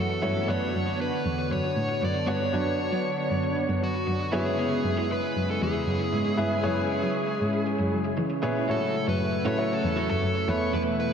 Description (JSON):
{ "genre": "pop", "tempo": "117 BPM", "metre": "4/4", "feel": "straight", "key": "unclear", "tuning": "A4 = 440 Hz", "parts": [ { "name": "dark smooth lead guitar", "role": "melody", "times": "0.0-11.1 s", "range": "F#4 to D5", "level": "-31 LUFS", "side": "equal", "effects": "overdrive, ping-pong delay" }, { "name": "warm concert grand piano", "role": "accompaniment", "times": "0.0-11.1 s", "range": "A2 to E5", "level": "-31 LUFS", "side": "left 1 dB", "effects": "none" }, { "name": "lush unison pad", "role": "sustained chords", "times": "0.0-11.1 s", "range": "B2 to C#5", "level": "-30 LUFS", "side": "equal", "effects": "chorus" }, { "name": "dark cello", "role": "bass", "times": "0.0-11.0 s", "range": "E2 to F#3", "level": "-30 LUFS", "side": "equal", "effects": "none" }, { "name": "twelve-string electric guitar", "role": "riff", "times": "0.1-11.0 s", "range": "F#3 to C#5", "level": "-35 LUFS", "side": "right 2 dB", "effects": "wide subtle chorus, ping-pong delay" } ], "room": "wet lush hall reverb, RT60 2.7 s", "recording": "dreamy mix soaked in reverb, nothing above 11.0 kHz", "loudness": "-24 LUFS", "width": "side -7 dB against mid", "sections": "0.0-8.7 A section; 8.7-11.1 B section", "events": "none", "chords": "0.5 Bmadd9; 4.3 E6; 8.7 A6; 10.5 Esus4" }